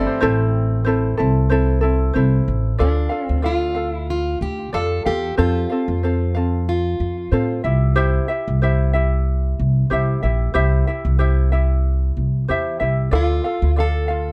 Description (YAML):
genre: acoustic pop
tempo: 93 BPM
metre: 4/4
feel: swing 55% on 16ths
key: unclear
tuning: A4 = 441 Hz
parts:
  - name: ukulele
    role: accompaniment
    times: 0.0-14.3 s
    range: C4 to F5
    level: -24 LUFS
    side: equal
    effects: none
  - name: picked steel-string acoustic guitar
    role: arpeggios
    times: 0.0-0.8 s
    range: E3 to C4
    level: -31 LUFS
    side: equal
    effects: plate reverb
  - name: upright bass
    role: bass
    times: 0.0-14.3 s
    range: A1 to A2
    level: -21 LUFS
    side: equal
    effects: none
  - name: fingerpicked plugged-in steel-string acoustic guitar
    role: melody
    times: 2.8-7.6, 13.2-14.3 s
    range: D4 to A4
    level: -27 LUFS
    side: equal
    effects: tape echo
room: light reverb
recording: dark, warm production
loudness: -19 LUFS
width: mono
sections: 0.2-2.8 A section; 2.8-14.3 B section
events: none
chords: 0.2 Am; 2.8 Dm; 5.4 F; 7.6 C; 13.1 Dm